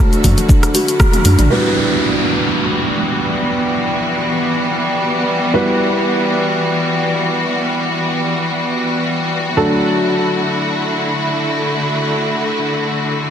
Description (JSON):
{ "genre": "afro house", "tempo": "free time", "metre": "none", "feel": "none", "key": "E minor", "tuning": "A4 = 439 Hz", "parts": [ { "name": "clear symphonic string section", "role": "sustained chords", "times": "0.0-13.3 s", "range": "D3 to F#4", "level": "-17 LUFS", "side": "equal", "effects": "sidechain pumping" }, { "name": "kalimba", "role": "arpeggios", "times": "0.0-1.4 s", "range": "A3 to D5", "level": "-21 LUFS", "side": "right 1 dB", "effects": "sidechain pumping, dub echo" }, { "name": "felt-muted upright piano", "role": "stabs", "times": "0.0-13.3 s", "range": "F#3 to B4", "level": "-21 LUFS", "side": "equal", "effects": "sidechain pumping, low-pass filter, dub echo" }, { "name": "congas", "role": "percussion", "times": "0.0-1.4 s", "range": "none", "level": "-24 LUFS", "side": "right 2 dB", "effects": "none" }, { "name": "deep house drum kit", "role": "drums", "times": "0.1-1.5 s", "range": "hi-hat, rim click, shaker, toms", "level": "-19 LUFS", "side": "equal", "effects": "soft clipping on snare" }, { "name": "warm sub bass", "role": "bass", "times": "0.2-1.5 s", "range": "A1 to F#2", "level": "-12 LUFS", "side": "equal", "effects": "sidechain pumping" }, { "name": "electronic kick drum", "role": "drums", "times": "0.2-1.1 s", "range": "none", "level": "-12 LUFS", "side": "equal", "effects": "none" }, { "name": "downlifter", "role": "sound effects", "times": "1.5-5.5 s", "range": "none", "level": "-20 LUFS", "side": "right 1 dB", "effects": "none" } ], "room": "wet lush hall reverb, RT60 2.5 s", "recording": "dense, heavily limited modern master", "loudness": "-14 LUFS", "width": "side -8 dB against mid", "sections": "0.0-1.5 A section; 1.5-13.3 B section", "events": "drum fill 1.0-1.5; band accent 1.0; filter sweep on felt piano 1.5-13.3", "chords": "0.0 D; 1.5 Emadd9; 9.6 D", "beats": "free time" }